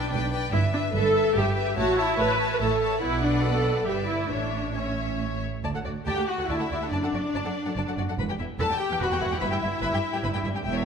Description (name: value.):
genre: quick classical-period movement for string orchestra.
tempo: 144 BPM.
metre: 3/4.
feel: rubato.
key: D major.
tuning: A4 = 441 Hz.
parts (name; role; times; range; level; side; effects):
clear studio violin section; melody; 0.0-10.4 s; D5 to A5; -33 LUFS; left 3 dB; none.
rich studio violin section; second line; 0.0-10.8 s; E4 to B5; -32 LUFS; left 4 dB; none.
rich studio viola section; accompaniment; 0.0-10.4 s; C#4 to B4; -26 LUFS; equal; none.
clear studio cello section; bass; 0.0-10.8 s; D2 to B2; -32 LUFS; right 3 dB; none.
rich studio double bass section; bass; 0.0-10.8 s; E1 to D2; -31 LUFS; right 3 dB; none.
room: moderate scoring stage reverb, RT60 1.9 s.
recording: none.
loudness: -23 LUFS.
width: side -6 dB against mid.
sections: 0.0-5.6 A section; 5.6-10.8 B section.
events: none.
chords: 0.0 G/B; 0.5 Em/G; 1.8 A; 3.0 Bm; 3.9 Em7/G; 4.3 A; 5.6 D; 6.9 D/F#; 8.2 Em; 9.4 Em/G.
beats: 0.12 | 0.53 0.94 1.36 | 1.77 2.18 2.60 | 3.02 3.44 3.86 | 4.30 4.75 5.20 | 5.64 6.07 6.49 | 6.92 7.34 7.76 | 8.18 8.59 9.01 | 9.42 9.82 10.23 | 10.64.